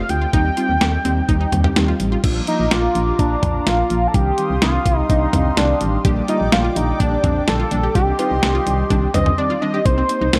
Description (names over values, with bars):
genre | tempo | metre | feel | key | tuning
synth-pop | 126 BPM | 4/4 | straight | unclear | A4 = 440 Hz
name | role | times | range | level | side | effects
octave-doubled lead | melody | 0.0-10.4 s | D4 to G5 | -23 LUFS | equal | chorus, slapback echo, shimmer reverb
mellow synth brass | accompaniment | 0.0-10.4 s | D3 to C5 | -26 LUFS | equal | chorus, shimmer reverb
unison pluck | arpeggios | 0.0-2.2, 6.0-10.3 s | C4 to G4 | -30 LUFS | equal | slapback echo, shimmer reverb
solid FM bass | bass | 0.0-10.4 s | A1 to Eb2 | -23 LUFS | equal | none
clean 12-bit digital drum machine | drums | 0.1-10.4 s | cowbell, crash cymbal, hi-hat, kick drum, snare drum, toms | -22 LUFS | equal | none
brassy analog pad | sustained chords | 2.2-9.8 s | F4 to Eb6 | -30 LUFS | equal | chorus, phaser, shimmer reverb
room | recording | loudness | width
moderate lush hall reverb, RT60 2.0 s | dark, warm production | -18 LUFS | mono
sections
0.0-2.2 A section; 2.2-9.9 B section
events
break 9.4-9.9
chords
0.3 Cm/Eb; 2.2 Bb; 4.1 Cmadd9; 6.0 Gm/Bb; 8.0 Cmadd9; 9.9 Cm7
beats
| 0.33 0.81 1.29 1.76 | 2.24 2.71 3.19 3.67 | 4.14 4.62 5.10 5.57 | 6.05 6.52 7.00 7.48 | 7.95 8.43 8.90 9.38 | 9.86 10.33